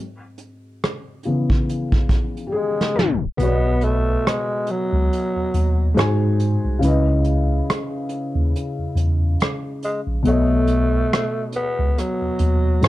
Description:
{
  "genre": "lo-fi hip hop",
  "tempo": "70 BPM",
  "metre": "4/4",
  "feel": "swing 58% on 16ths",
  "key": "unclear",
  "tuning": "A4 = 440 Hz",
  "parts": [
    { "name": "vintage brush drum kit", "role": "drums", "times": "0.4-12.9 s", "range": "hi-hat, kick drum, rim click, snare drum", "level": "-22 LUFS", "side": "right 1 dB", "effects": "none" },
    { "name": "felt-muted upright piano", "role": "accompaniment", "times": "1.3-12.9 s", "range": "B2 to G#5", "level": "-23 LUFS", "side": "left 2 dB", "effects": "cassette tape, low-pass filter" },
    { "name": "growling tenor saxophone", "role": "melody", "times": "2.5-12.9 s", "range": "F#3 to B3", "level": "-23 LUFS", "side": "right 1 dB", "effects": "low-pass filter, analog delay" },
    { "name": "mellow tine electric piano", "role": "bass", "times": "3.4-12.9 s", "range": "A#1 to G#2", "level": "-19 LUFS", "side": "equal", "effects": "medium stereo tremolo" }
  ],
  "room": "light reverb",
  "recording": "dark, warm production, tape stop",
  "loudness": "-18 LUFS",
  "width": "side -16 dB against mid",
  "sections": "0.0-3.4 A section; 3.4-12.9 B section",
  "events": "felt piano solo 0.0-3.4; drum fill 2.5-3.4; tape stop 3.0-3.4; kick muted 3.4-12.9",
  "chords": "0.0 C#m7; 3.4 B; 6.0 G#7; 6.8 C#m7; 10.2 B7"
}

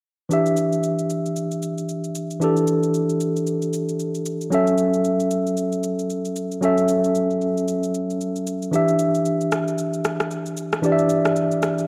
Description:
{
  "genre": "amapiano",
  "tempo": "114 BPM",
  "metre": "4/4",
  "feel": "swing 58% on 16ths",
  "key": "E dorian",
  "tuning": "A4 = 440 Hz",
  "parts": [
    { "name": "tine electric piano", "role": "accompaniment", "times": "0.3-11.9 s", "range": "E3 to E5", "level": "-22 LUFS", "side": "equal", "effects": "none" },
    { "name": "electronic shaker and rim click", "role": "drums", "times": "0.3-11.9 s", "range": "none", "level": "-32 LUFS", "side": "equal", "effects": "none" }
  ],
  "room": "moderate lush hall reverb, RT60 1.8 s",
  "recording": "worn, warbling old tape, cassette tape, warbly pitch drift",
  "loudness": "-22 LUFS",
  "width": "mono",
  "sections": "0.3-11.9 A section",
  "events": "none",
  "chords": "0.3 Em7; 4.5 F#m7; 8.7 Em7"
}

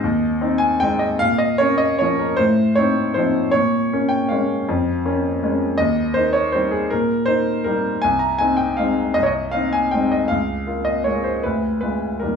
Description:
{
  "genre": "classical, piano waltz",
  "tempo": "145-169 BPM",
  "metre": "3/4",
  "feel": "rubato",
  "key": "Ab major",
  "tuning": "A4 = 440 Hz",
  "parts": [
    { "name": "clear grand piano", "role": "solo", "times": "0.0-12.4 s", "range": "C2 to Bb5", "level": "-17 LUFS", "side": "equal", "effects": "none" }
  ],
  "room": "wet stone room reverb, RT60 1.0 s",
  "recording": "small room reverb",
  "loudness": "-17 LUFS",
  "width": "side -6 dB against mid",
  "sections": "0.0-12.4 A section",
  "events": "none",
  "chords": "0.0 Ab; 1.2 Bbm; 2.4 F7/A; 3.5 Bbm7; 5.8 Eb; 8.0 Ab/C; 10.3 Bbm7/Db; 11.4 Ddim7"
}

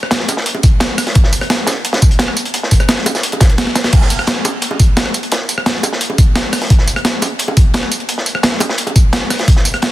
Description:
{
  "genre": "drum and bass",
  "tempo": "173 BPM",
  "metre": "4/4",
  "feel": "straight",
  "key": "none",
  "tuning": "none",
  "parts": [
    { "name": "breakbeat sampler-style drum kit", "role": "drums", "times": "0.0-9.9 s", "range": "crash cymbal, hi-hat, rim click, snare drum, tambourine", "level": "-16 LUFS", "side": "equal", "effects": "overdrive" },
    { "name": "crunchy breakbeat drum kit", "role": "drums", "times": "0.1-9.9 s", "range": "hi-hat, snare drum", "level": "-20 LUFS", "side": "equal", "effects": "high-pass filter on hats, high-pass filter on snare, high-pass filter on room" },
    { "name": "bongos", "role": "percussion", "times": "0.3-8.9 s", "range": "none", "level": "-24 LUFS", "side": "right 1 dB", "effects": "none" },
    { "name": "electronic kick drum", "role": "drums", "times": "0.6-9.5 s", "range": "none", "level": "-10 LUFS", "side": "equal", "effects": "overdrive" }
  ],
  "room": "small room ambience",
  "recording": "dense, heavily limited modern master",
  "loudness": "-11 LUFS",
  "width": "side -15 dB against mid",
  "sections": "0.0-9.9 A section",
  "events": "drum fill 3.7",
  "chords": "none"
}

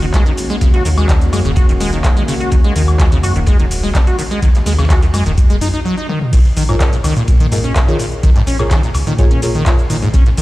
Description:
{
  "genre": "acid house",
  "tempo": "126 BPM",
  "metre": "4/4",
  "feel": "straight",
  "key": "Bb minor",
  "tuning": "A4 = 437 Hz",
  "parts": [
    { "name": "warm analog pad", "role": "sustained chords", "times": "0.0-5.8 s", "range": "Eb3 to Gb4", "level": "-23 LUFS", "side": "left 2 dB", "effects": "chorus, sidechain pumping" },
    { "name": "acid bass, saw", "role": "riff", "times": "0.0-10.4 s", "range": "Ab2 to Gb4", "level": "-19 LUFS", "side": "equal", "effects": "tube saturation, wide subtle chorus, dub echo" },
    { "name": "round analog bass", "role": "bass", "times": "0.0-10.4 s", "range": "Eb1 to Bb2", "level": "-17 LUFS", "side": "equal", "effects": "sidechain pumping" },
    { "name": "electro analog drum machine", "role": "drums", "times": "0.0-10.4 s", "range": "cabasa, crash cymbal, handclaps, hi-hat, toms, woodblock", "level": "-23 LUFS", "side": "left 1 dB", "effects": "none" },
    { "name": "electronic kick drum", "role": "drums", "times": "0.1-10.2 s", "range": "none", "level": "-13 LUFS", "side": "equal", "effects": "none" },
    { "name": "vintage drum kit", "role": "drums", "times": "0.1-10.4 s", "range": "ride cymbal, snare drum", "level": "-34 LUFS", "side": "left 1 dB", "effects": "none" },
    { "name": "deep mellow chord stab", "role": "stabs", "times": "6.7-9.8 s", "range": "F4 to Eb5", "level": "-23 LUFS", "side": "left 1 dB", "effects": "chorus, dub echo" }
  ],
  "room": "digital ambience",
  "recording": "played on a big sound system in a bare room, large studio reverb",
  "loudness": "-11 LUFS",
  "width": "side -18 dB against mid",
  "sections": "0.0-6.3 A section; 6.3-10.4 B section",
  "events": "break 5.9-6.3; drum fill 6.1; drop 6.3-10.4",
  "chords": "0.0 Ebm7; 6.3 Bbm7"
}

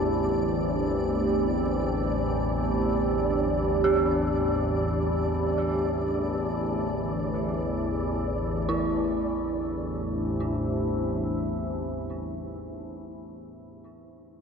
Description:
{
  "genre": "dark ambient drone",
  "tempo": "free time",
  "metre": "none",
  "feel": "none",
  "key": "A minor",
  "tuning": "A4 = 439 Hz",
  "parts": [
    { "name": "deep dark ambient pad", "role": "sustained chords", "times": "0.0-13.0 s", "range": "A3 to E5", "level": "-29 LUFS", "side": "right 1 dB", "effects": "chorus, built-in reverb" },
    { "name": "organ-like drone", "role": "drone", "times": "0.0-12.3 s", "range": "A1 to E2", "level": "-29 LUFS", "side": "left 1 dB", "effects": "ensemble chorus, built-in reverb, phaser" },
    { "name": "flickering grainy texture", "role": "texture", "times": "0.0-8.7 s", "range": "D5", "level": "-36 LUFS", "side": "right 1 dB", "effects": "built-in reverb" },
    { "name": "dark detuned synth bell", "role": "arpeggios", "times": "3.8-14.4 s", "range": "E4 to G4", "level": "-32 LUFS", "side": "right 2 dB", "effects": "chorus, phaser, tape echo" }
  ],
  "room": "wet cathedral reverb, RT60 5.5 s",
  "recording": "none",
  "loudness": "-24 LUFS",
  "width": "side -6 dB against mid",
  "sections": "0.0-8.7 A section; 8.7-13.3 B section",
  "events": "none",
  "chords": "0.0 Am"
}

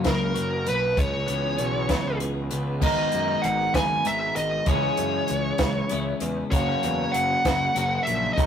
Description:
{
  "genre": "indie rock",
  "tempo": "65 BPM (dotted quarters)",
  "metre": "6/8",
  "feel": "straight",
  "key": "C# dorian",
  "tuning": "A4 = 440 Hz",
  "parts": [
    { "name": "electric guitar through a small old amp", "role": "riff", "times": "0.0-8.5 s", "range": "D#3 to A#4", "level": "-30 LUFS", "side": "right 1 dB", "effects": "none" },
    { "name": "twelve-string electric guitar", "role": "riff", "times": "0.0-8.5 s", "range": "F#2 to A#4", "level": "-31 LUFS", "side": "left 5 dB", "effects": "none" },
    { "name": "fuzz picked electric bass", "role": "bass", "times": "0.0-8.5 s", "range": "F#1 to F#2", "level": "-30 LUFS", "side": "equal", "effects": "overdrive" },
    { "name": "compact cocktail drum kit", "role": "drums", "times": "0.0-8.5 s", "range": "crash cymbal, hi-hat, kick drum, snare drum", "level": "-26 LUFS", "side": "equal", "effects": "none" },
    { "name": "smooth overdriven lead guitar", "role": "melody", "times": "0.1-8.5 s", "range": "A#4 to G#5", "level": "-25 LUFS", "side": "right 1 dB", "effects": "none" }
  ],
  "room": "moderate stone room reverb, RT60 1.1 s",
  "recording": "rough rehearsal-room recording, tube saturation",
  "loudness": "-22 LUFS",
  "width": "side -8 dB against mid",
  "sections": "0.0-2.8 A section; 2.8-8.5 B section",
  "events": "none",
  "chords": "0.0 F#; 1.0 C#m7; 2.8 G#madd9; 4.7 C#m; 6.5 F#"
}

